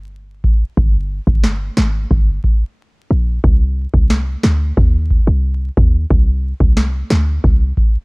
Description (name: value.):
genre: dancehall.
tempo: 90 BPM.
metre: 4/4.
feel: straight.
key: C minor.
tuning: A4 = 440 Hz.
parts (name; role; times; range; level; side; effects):
short 808-style bass; bass; 0.0-7.7 s; G1 to Eb2; -16 LUFS; equal; none.
booming analog drum machine; drums; 0.4-8.0 s; kick drum, snare drum; -14 LUFS; equal; none.
room: little or no reverb.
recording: dark, warm production, vinyl crackle.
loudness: -13 LUFS.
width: side -32 dB against mid.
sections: 0.0-8.0 A section.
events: none.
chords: none.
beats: 0.10 | 0.77 1.44 2.10 2.77 | 3.44 4.11 4.77 5.44 | 6.11 6.77 7.44.